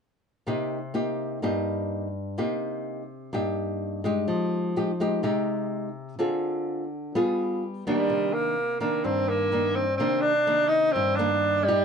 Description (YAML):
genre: bossa nova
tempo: 126 BPM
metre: 4/4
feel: straight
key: C minor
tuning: A4 = 445 Hz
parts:
  - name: nylon-string guitar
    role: accompaniment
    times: 0.5-11.8 s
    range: G2 to Ab4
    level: -26 LUFS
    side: left 1 dB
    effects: none
  - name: breathy tenor saxophone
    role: melody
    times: 7.9-11.8 s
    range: G3 to Eb4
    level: -23 LUFS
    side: right 1 dB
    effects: none
room: moderate studio ambience, RT60 0.5 s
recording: band playing live in one room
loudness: -24 LUFS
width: side -6 dB against mid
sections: 0.5-8.1 A section; 8.1-11.8 B section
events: none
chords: 0.5 Cm7; 4.3 Fm9; 6.2 Dm7b5; 7.1 G7b9; 8.1 Cm9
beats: | 0.46 0.94 1.42 1.90 | 2.37 2.85 3.33 3.81 | 4.28 4.76 5.24 5.71 | 6.19 6.67 7.14 7.62 | 8.10 8.57 9.05 9.53 | 10.00 10.48 10.95 11.43